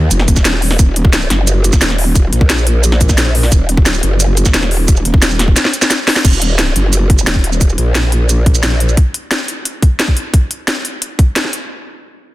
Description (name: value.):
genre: dark technical drum and bass.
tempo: 176 BPM.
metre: 4/4.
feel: straight.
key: Eb minor.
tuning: A4 = 440 Hz.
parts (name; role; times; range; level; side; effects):
growl bass; bass; 0.0-9.0 s; Eb1 to Bb1; -13 LUFS; equal; chorus, overdrive, sidechain pumping.
drum and bass drum kit; drums; 0.1-11.6 s; crash cymbal, hi-hat, shaker, snare drum; -15 LUFS; equal; studio ambience.
electronic kick drum; drums; 0.3-11.3 s; none; -10 LUFS; equal; studio ambience.
room: little or no reverb.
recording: dense, heavily limited modern master.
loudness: -10 LUFS.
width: side -17 dB against mid.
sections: 0.0-6.2 A section; 6.2-11.7 B section.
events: drop 0.0-6.2; drum fill 5.6-6.2.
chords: none.